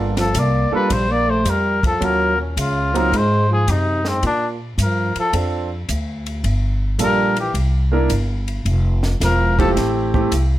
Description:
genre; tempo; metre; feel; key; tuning
jazz, small-group swing and bop; 108 BPM; 4/4; swing 68% on 8ths; F major; A4 = 442 Hz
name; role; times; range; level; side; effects
clear concert grand piano; accompaniment; 0.0-10.3 s; A3 to Bb4; -22 LUFS; right 3 dB; none
upright bass; bass; 0.0-10.6 s; E1 to Bb2; -20 LUFS; equal; none
warm trumpet; melody; 0.2-9.7 s; C4 to D5; -20 LUFS; left 2 dB; plate reverb
breathy trombone; second line; 0.2-9.8 s; Ab2 to Bb3; -23 LUFS; right 2 dB; none
compact cocktail drum kit; drums; 0.2-10.5 s; hi-hat, kick drum, ride cymbal, snare drum; -27 LUFS; equal; none
room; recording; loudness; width
light reverb; none; -16 LUFS; side -14 dB against mid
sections
0.0-10.6 A section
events
none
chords
0.0 Gm7; 2.0 Ebm7; 3.1 Ab7; 4.2 Bbmaj7; 6.4 Gm7; 7.5 C7; 8.7 Fmaj7

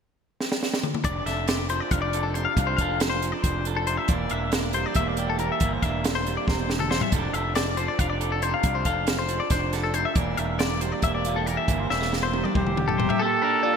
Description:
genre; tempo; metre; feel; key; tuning
math rock and midwest emo; 276 BPM (eighths); 7/8; straight; F major; A4 = 441 Hz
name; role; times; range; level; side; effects
compact cocktail drum kit; drums; 0.4-13.2 s; hi-hat, kick drum, snare drum, toms; -26 LUFS; equal; gated reverb
electric guitar through a small old amp; accompaniment; 1.0-13.8 s; F2 to A4; -30 LUFS; right 7 dB; none
twelve-string electric guitar; arpeggios; 1.0-13.8 s; A4 to F5; -27 LUFS; left 6 dB; none
growling fingered electric bass; bass; 1.0-13.1 s; E1 to C2; -30 LUFS; equal; overdrive
clear trumpet; melody; 12.6-13.8 s; G4 to A4; -24 LUFS; right 2 dB; none
room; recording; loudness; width
moderate lush hall reverb, RT60 1.9 s; bright 1980s-style digital production; -22 LUFS; side -6 dB against mid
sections
0.0-1.0 A section; 1.0-13.2 B section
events
drum fill 0.4-1.0, 6.5-7.1, 11.9-13.2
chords
0.0 N.C.; 1.0 F6; 4.1 C9/E; 7.1 F6; 10.2 C9/E; 13.2 Bb6

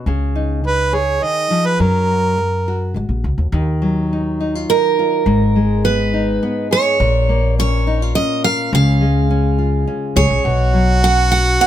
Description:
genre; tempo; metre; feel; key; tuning
acoustic folk duo or small band; 104 BPM; 3/4; straight; unclear; A4 = 440 Hz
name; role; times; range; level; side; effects
nylon-string guitar; accompaniment; 0.0-11.7 s; G#2 to A#4; -20 LUFS; left 2 dB; none
upright bass; bass; 0.1-11.6 s; G#1 to F#2; -17 LUFS; equal; none
clear harmonica; second line; 0.7-3.0, 10.4-11.7 s; F#4 to D#5; -17 LUFS; right 3 dB; none
picked steel-string acoustic guitar; melody; 4.7-11.7 s; A#4 to F#5; -17 LUFS; right 4 dB; none
room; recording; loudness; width
light reverb; close, detailed microphones; -14 LUFS; side -11 dB against mid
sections
0.0-3.5 A section; 3.5-11.7 B section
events
harmonica solo 0.0-3.5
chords
0.1 C#add9; 1.8 F#; 3.5 D#madd9; 5.3 G#m; 7.0 A#m; 8.7 C#; 10.5 Bsus2

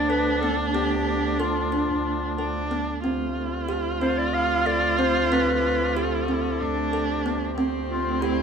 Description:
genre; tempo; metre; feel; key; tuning
contemporary instrumental, chamber music in an uneven meter; 185 BPM (eighths); 7/8; straight; unclear; A4 = 440 Hz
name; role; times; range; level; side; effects
warm clarinet; melody; 0.0-8.4 s; E4 to F5; -27 LUFS; left 3 dB; none
warm viola; second line; 0.0-8.4 s; C4 to F4; -26 LUFS; right 2 dB; none
mellow woodwind section; sustained chords; 0.0-8.4 s; F3 to G4; -33 LUFS; left 4 dB; none
warm double bass; bass; 0.0-8.4 s; D2; -29 LUFS; right 4 dB; none
kalimba; arpeggios; 0.1-8.4 s; B3 to A4; -29 LUFS; right 1 dB; none
room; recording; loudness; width
light reverb; none; -22 LUFS; side -6 dB against mid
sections
0.0-8.4 A section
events
none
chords
0.0 Dm6; 3.0 Fadd9/D

